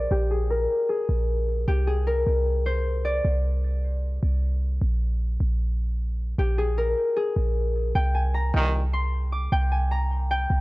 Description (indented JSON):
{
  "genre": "hip hop",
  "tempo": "153 BPM",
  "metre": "4/4",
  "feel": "half-time",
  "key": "unclear",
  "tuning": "A4 = 439 Hz",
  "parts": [
    { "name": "concert harp", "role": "melody", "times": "0.0-10.6 s", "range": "G4 to D6", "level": "-27 LUFS", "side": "left 2 dB", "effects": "low-pass filter" },
    { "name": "clean 808-style bass", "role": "bass", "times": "0.0-10.6 s", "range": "Bb1 to C2", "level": "-23 LUFS", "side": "equal", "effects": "none" },
    { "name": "bright brass ensemble", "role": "stabs", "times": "8.5-8.8 s", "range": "C2 to Eb3", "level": "-26 LUFS", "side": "right 1 dB", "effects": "none" }
  ],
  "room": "small room reverb",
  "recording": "dry, gritty hardware recording, transformer saturation",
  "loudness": "-22 LUFS",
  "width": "side -20 dB against mid",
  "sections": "0.0-8.0 A section; 8.0-10.6 B section",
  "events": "filter sweep on harp 0.0-1.7",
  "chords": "0.0 Bb9; 1.7 Csus2; 4.8 N.C.; 8.0 C5"
}